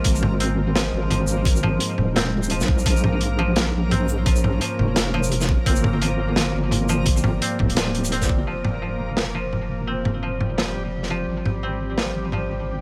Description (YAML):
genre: half-time drum and bass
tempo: 171 BPM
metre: 4/4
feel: swing 56% on 16ths, half-time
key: F minor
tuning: A4 = 440 Hz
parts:
  - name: deep dark ambient pad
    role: sustained chords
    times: 0.0-12.8 s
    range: F3 to D5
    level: -34 LUFS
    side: equal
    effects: chorus, built-in reverb, sidechain pumping
  - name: koto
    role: arpeggios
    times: 0.0-12.8 s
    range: F3 to C4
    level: -30 LUFS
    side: equal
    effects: low-pass filter, tape echo
  - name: deep soft wobble bass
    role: bass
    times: 0.0-12.8 s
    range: D1 to C2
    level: -27 LUFS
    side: equal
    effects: chorus
  - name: crunchy breakbeat drum kit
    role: drums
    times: 0.0-12.4 s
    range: hi-hat, shaker, snare drum, toms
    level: -27 LUFS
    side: equal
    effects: none
  - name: electronic kick drum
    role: drums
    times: 0.0-8.4 s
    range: none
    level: -23 LUFS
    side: equal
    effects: none
  - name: backwards swelling texture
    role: texture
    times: 0.0-12.8 s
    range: G3 to Bb4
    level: -36 LUFS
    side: equal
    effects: built-in reverb
room: small room ambience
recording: none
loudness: -22 LUFS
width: mono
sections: 0.0-8.5 A section; 8.5-12.8 B section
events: drop 0.0-8.5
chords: 0.0 Fm; 2.9 Bbm; 5.7 Gm7; 8.5 F5; 11.3 Ab